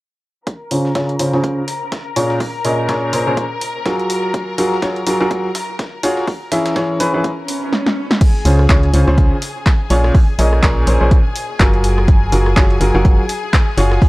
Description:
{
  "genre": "piano house",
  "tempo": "124 BPM",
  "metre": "4/4",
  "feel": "swing 57% on 16ths",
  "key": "Db major",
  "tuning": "A4 = 444 Hz",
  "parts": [
    { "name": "rich studio string section", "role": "sustained chords", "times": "0.5-14.1 s", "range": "Ab4 to Bb5", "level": "-26 LUFS", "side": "left 3 dB", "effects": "sidechain pumping, low-pass filter" },
    { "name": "breakbeat sampler-style drum kit", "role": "drums", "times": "0.5-14.1 s", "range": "hi-hat, snare drum", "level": "-32 LUFS", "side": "equal", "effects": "sidechain pumping on hats, high-pass filter on hats, small room ambience, high-pass filter on snare, high-pass filter on room" },
    { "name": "electronic kick drum", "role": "drums", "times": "0.5-14.1 s", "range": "none", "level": "-13 LUFS", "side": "equal", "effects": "overdrive, high-pass filter on kick, small room ambience" },
    { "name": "clear upright piano", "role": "riff", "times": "0.7-14.0 s", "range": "Bb2 to E5", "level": "-18 LUFS", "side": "equal", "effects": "sidechain pumping, low-pass filter, tape echo" },
    { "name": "punchy analog drum machine", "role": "drums", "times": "0.7-14.0 s", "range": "crash cymbal, handclaps, hi-hat, rim click, snare drum", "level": "-21 LUFS", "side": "equal", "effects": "overdrive, small room ambience" },
    { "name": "swell", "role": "sound effects", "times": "7.4-8.2 s", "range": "none", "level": "-24 LUFS", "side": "right 1 dB", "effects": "none" },
    { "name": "organ-like FM bass", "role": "bass", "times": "8.5-14.0 s", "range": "Gb1 to Db2", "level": "-14 LUFS", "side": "equal", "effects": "sidechain pumping" }
  ],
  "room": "little or no reverb",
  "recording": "dry, gritty hardware recording",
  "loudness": "-13 LUFS",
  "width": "side -20 dB against mid",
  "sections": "0.5-8.2 A section; 8.2-14.1 B section",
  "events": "filter sweep on upright piano 0.5-8.2; filter sweep on string section 0.5-8.2; swell 7.4-8.2; drum fill 7.7-8.2",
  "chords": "0.5 Dbmaj7; 2.4 Bbm9; 4.1 Gbmaj9; 6.3 E6; 8.2 Dbmaj7; 10.1 Bbm9; 11.8 Gbmaj9",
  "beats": "| 0.47 0.95 1.44 1.92 | 2.40 2.89 3.37 3.86 | 4.34 4.82 5.31 5.79 | 6.28 6.76 7.24 7.73 | 8.21 8.70 9.18 9.66 | 10.15 10.63 11.11 11.60 | 12.08 12.57 13.05 13.53 | 14.02"
}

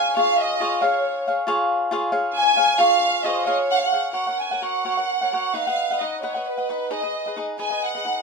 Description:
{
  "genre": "mexican folk, mariachi",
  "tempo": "88 BPM (dotted quarters)",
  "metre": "6/8",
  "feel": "rubato",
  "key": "Db major, F# major from 4.1 s",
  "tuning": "A4 = 440 Hz",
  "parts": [
    { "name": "dark studio violin section", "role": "melody", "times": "0.0-8.2 s", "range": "B4 to Ab5", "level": "-21 LUFS", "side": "right 1 dB", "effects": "none" },
    { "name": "cavaquinho", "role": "accompaniment", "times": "0.0-8.2 s", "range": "D#4 to F#5", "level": "-23 LUFS", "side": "left 2 dB", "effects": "none" }
  ],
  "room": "moderate studio reverb, RT60 0.6 s",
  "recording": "minimal, uncompressed stereo recording",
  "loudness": "-19 LUFS",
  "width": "side -4 dB against mid",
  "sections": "0.0-4.1 A section; 4.1-8.2 B section",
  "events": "none",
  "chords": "0.0 Db; 4.1 F#; 5.5 B; 6.9 G#m",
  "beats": "| 0.15 0.81 | 1.46 2.12 | 2.78 3.46 | 4.14 4.84 | 5.53 6.21 | 6.89 7.57"
}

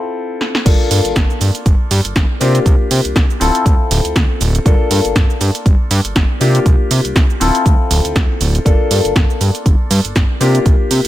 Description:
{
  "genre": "filtered disco house",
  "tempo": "120 BPM",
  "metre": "4/4",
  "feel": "swing 56% on 16ths",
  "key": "G dorian",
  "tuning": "A4 = 440 Hz",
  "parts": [
    { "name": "warm concert grand piano", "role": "accompaniment", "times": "0.0-11.1 s", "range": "Bb3 to A4", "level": "-19 LUFS", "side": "left 3 dB", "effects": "phaser, sidechain pumping, low-pass filter" },
    { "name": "punchy analog drum machine", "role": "drums", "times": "0.4-11.1 s", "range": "crash cymbal, hi-hat, shaker, snare drum", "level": "-19 LUFS", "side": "right 2 dB", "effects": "sidechain pumping on hats, sidechain pumping on perc, sidechain pumping on cymbals" },
    { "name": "fat analog bass", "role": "bass", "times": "0.7-11.1 s", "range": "D1 to C3", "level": "-16 LUFS", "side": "equal", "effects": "tube saturation, sidechain pumping, low-pass filter" },
    { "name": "electronic kick drum", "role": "drums", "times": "0.7-10.8 s", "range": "none", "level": "-12 LUFS", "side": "equal", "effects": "none" }
  ],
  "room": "little or no reverb",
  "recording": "none",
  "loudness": "-11 LUFS",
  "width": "side -14 dB against mid",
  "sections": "0.7-11.1 A section",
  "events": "break 0.0-0.7; drum fill 0.4; drop 0.7-11.1",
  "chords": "0.0 Dm7 (rootless); 0.7 Gm9; 2.4 C9sus4; 3.4 Dm7; 4.7 Gm9; 6.4 C9sus4; 7.4 Dm7; 8.7 Gm9; 10.4 C9sus4",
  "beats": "0.16 | 0.66 1.16 1.66 2.16 | 2.66 3.16 3.66 4.16 | 4.66 5.16 5.66 6.16 | 6.66 7.16 7.66 8.16 | 8.66 9.16 9.66 10.16 | 10.66"
}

